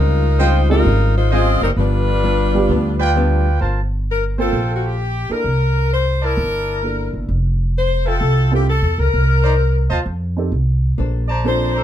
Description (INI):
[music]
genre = jazz, big band swing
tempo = 130 BPM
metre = 4/4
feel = swing 66% on 8ths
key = G minor from 3.6 s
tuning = A4 = 440 Hz
[part]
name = bright saxophone section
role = melody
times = 0.0-11.8 s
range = G3 to Eb5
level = -20 LUFS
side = left 4 dB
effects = plate reverb
[part]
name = archtop guitar, miked and amplified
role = accompaniment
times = 0.0-3.5, 11.0-11.8 s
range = G2 to C5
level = -24 LUFS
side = left 4 dB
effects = none
[part]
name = upright bass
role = bass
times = 0.0-11.8 s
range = F1 to F2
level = -17 LUFS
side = equal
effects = none
[part]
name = warm trumpet section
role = stabs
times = 0.4-11.8 s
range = Eb4 to Bb5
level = -23 LUFS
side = right 2 dB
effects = none
[part]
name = warm upright piano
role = accompaniment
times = 0.7-11.8 s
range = G3 to A4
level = -22 LUFS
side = right 4 dB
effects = none
[sound]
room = light reverb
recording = dark, warm production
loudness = -15 LUFS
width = side -11 dB against mid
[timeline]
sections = 0.0-3.6 A section; 3.6-11.8 B section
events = none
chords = 0.0 Dbmaj9#11; 1.8 G7; 3.6 Gm11; 5.5 C13; 7.3 Fmaj9; 9.1 Cm7; 10.1 F7; 11.0 Bbmaj9